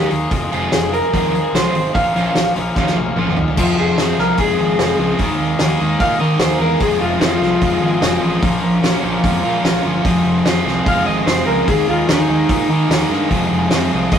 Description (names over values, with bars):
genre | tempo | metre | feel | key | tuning
indie rock | 148 BPM | 4/4 | straight | F minor | A4 = 440 Hz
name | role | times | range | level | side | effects
electric guitar through a small old amp | melody | 0.0-8.4, 10.9-14.2 s | Eb4 to F5 | -19 LUFS | left 1 dB | none
crunchy overdriven guitar | riff | 0.0-14.2 s | F2 to Ab4 | -22 LUFS | left 1 dB | none
overdriven electric guitar | riff | 0.0-14.2 s | Bb2 to Bb4 | -20 LUFS | right 1 dB | none
fuzz picked electric bass | bass | 0.0-14.2 s | F1 to Eb3 | -22 LUFS | equal | overdrive
loose indie drum kit | drums | 0.1-14.2 s | crash cymbal, hi-hat, kick drum, snare drum, toms | -20 LUFS | equal | none
room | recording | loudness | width
light reverb | rough rehearsal-room recording, warm saturation | -14 LUFS | side -8 dB against mid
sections
0.0-3.6 A section; 3.6-14.2 B section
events
drum fill 2.8-3.6; clean electric guitar solo 3.6-14.2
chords
0.3 Fm; 1.9 Bbm; 3.6 Fm; 5.2 Ebsus4; 6.8 Fm; 8.4 Bbm7; 10.1 Fm; 11.7 Ebsus4; 13.3 Fm